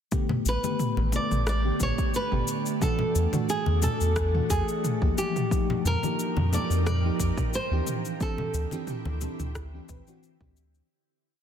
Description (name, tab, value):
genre	sunset chillout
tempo	89 BPM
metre	4/4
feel	swing 53% on 16ths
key	unclear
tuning	A4 = 439 Hz
part	mellow FM electric piano	accompaniment	0.1-10.9 s	D3 to B4	-32 LUFS	moving between left 7 dB and right 5 dB	chorus, phaser, auto-pan, low-pass filter
part	ethereal airy pad	sustained chords	0.9-10.9 s	D3 to Bb4	-34 LUFS	equal	ensemble chorus, built-in reverb, phaser
part	deep house drum kit	drums	0.1-10.9 s	cabasa, rim click, toms	-33 LUFS	right 1 dB	overdrive
part	electronic kick drum	drums	0.1-10.5 s	none	-29 LUFS	equal	overdrive
part	congas	percussion	0.3-9.4 s	none	-34 LUFS	left 3 dB	none
part	flamenco guitar	melody	0.5-10.2 s	G4 to D5	-30 LUFS	right 1 dB	ping-pong delay
part	warm sub bass	bass	0.5-10.8 s	G1 to F2	-26 LUFS	equal	none
room	light reverb, digital ambience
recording	dense, heavily limited modern master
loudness	-24 LUFS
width	side -8 dB against mid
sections	0.1-10.9 groove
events	filter sweep on FM electric piano 0.1-10.9; fade-out 7.3-10.9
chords	0.1 A9sus4; 2.8 E9sus4; 5.2 F9sus4; 7.9 D9sus4